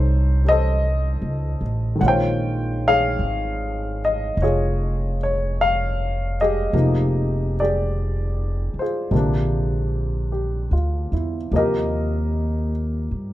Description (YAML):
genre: jazz ballad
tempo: 50 BPM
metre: 4/4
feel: swing 68% on 8ths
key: unclear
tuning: A4 = 440 Hz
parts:
  - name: warm baby grand piano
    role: accompaniment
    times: 0.0-13.3 s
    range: C3 to G5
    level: -22 LUFS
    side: left 1 dB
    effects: none
  - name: upright bass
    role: bass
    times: 0.0-13.3 s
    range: F1 to G2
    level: -22 LUFS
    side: equal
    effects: none
room: little or no reverb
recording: close, detailed microphones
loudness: -19 LUFS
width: side -14 dB against mid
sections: 0.0-13.3 A section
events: none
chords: 0.0 F7b13; 2.0 Bbm9; 6.7 Fm9; 9.1 Bb9; 11.5 Eb